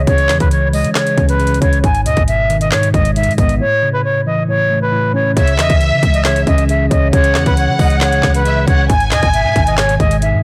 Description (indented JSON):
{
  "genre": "hip hop, trap",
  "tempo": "136 BPM",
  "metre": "4/4",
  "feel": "half-time",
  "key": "C# minor",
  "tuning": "A4 = 439 Hz",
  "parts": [
    { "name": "reedy concert flute", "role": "melody", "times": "0.0-10.4 s", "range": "B4 to G#5", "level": "-19 LUFS", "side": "equal", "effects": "low-pass filter, delay" },
    { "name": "mellow tine electric piano", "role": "accompaniment", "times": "0.0-10.4 s", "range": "G#2 to C#5", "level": "-20 LUFS", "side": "equal", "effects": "low-pass filter" },
    { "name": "clean 808-style bass", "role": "bass", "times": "0.0-10.4 s", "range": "G#1 to C#3", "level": "-20 LUFS", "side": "equal", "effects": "none" },
    { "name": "trap drum kit", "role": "drums", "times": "0.1-10.3 s", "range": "handclaps, hi-hat, kick drum, snare drum", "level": "-19 LUFS", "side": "equal", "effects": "none" },
    { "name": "warm studio violin section", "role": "second line", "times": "5.4-10.2 s", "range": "E5 to G#5", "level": "-22 LUFS", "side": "equal", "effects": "delay" }
  ],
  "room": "digital ambience",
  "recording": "blown-out, overdriven recording, overdrive",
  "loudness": "-14 LUFS",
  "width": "mono",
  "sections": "0.0-5.4 A section; 5.4-10.4 B section",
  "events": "drums muted 3.6-5.4",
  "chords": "0.0 C#m; 1.8 G#m; 3.6 A; 5.4 C#m; 8.9 G#m"
}